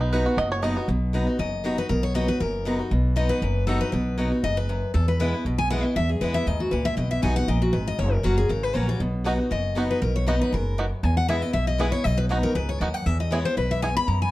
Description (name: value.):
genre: bluegrass.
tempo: 236 BPM.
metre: 4/4.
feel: swing 54% on 8ths.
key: B major.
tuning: A4 = 440 Hz.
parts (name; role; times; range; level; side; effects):
bluegrass banjo; melody; 0.0-0.9, 9.3-13.9 s; B3 to D#5; -28 LUFS; right 2 dB; none.
picked steel-string acoustic guitar; accompaniment; 0.0-14.3 s; E2 to F#4; -27 LUFS; equal; none.
upright bass; bass; 0.0-14.3 s; F#1 to F#2; -25 LUFS; equal; none.
picked steel-string acoustic guitar; melody; 1.4-14.3 s; F#4 to B5; -27 LUFS; left 2 dB; none.
room: moderate studio reverb, RT60 0.7 s.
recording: dark, warm production.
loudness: -21 LUFS.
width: side -17 dB against mid.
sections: 0.9-14.3 A section.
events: none.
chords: 0.0 B; 4.9 E; 7.0 B; 8.0 F#; 9.0 B; 11.0 E; 12.0 B; 13.1 E.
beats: 0.13 0.38 0.63 | 0.89 1.14 1.39 1.65 | 1.90 2.15 2.41 2.66 | 2.91 3.17 3.42 3.67 | 3.93 4.18 4.43 4.69 | 4.94 5.20 5.45 5.70 | 5.96 6.21 6.47 6.72 | 6.97 7.23 7.48 7.73 | 7.99 8.24 8.50 8.75 | 9.00 9.26 9.51 9.76 | 10.02 10.27 10.53 10.78 | 11.03 11.29 11.54 11.79 | 12.05 12.30 12.55 12.81 | 13.06 13.32 13.57 13.82 | 14.08.